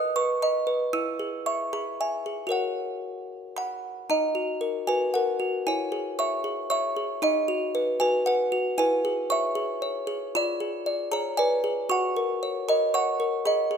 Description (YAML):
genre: classical, lullaby for music box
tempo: 115 BPM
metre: 3/4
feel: straight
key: unclear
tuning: A4 = 439 Hz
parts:
  - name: music box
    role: solo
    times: 0.0-13.8 s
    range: D#4 to E6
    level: -24 LUFS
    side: equal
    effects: none
room: light reverb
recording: minimal, uncompressed stereo recording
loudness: -24 LUFS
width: side -7 dB against mid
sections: 0.0-4.1 A section; 4.1-13.8 B section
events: none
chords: 0.0 B; 0.9 E; 2.5 F#; 4.1 D#m; 5.7 C#m/E; 7.2 B/D#; 8.8 C#m7/E; 10.3 Fdim7; 11.9 F#